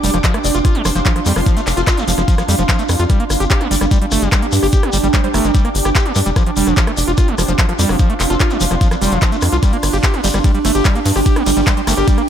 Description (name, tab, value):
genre	psychedelic trance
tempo	147 BPM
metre	4/4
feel	straight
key	unclear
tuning	A4 = 441 Hz
part	pulsing gated texture	sustained chords	0.0-12.3 s	D4	-22 LUFS	right 6 dB	chorus, built-in reverb, sidechain pumping
part	screaming distorted acid line	riff	0.0-12.2 s	F3 to G4	-20 LUFS	equal	distortion, chorus, auto-pan, sidechain pumping, tape echo
part	tight sequencer bass	bass	0.0-12.0 s	F1 to G2	-18 LUFS	equal	none
part	drum and bass drum kit	drums	0.0-12.3 s	handclaps, hi-hat, ride cymbal, rim click	-22 LUFS	equal	none
part	shekere	percussion	0.0-12.2 s	none	-26 LUFS	left 5 dB	none
part	ethereal airy pad	texture	0.0-12.3 s	C4 to D6	-22 LUFS	right 1 dB	ensemble chorus, built-in reverb, sidechain pumping
part	electronic kick drum	drums	0.2-12.2 s	none	-14 LUFS	equal	none
part	resonant blip pluck	second line	0.4-12.0 s	A4 to D5	-31 LUFS	right 1 dB	none
room	light reverb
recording	none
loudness	-12 LUFS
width	side -9 dB against mid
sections	0.0-12.3 A section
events	none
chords	0.0 F5; 3.1 G5; 6.4 F5; 9.6 G5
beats	0.24 0.65 1.06 | 1.46 1.87 2.28 2.69 | 3.10 3.50 3.91 4.32 | 4.73 5.14 5.55 5.95 | 6.36 6.77 7.18 7.59 | 8.00 8.40 8.81 9.22 | 9.63 10.04 10.44 10.85 | 11.26 11.67 12.08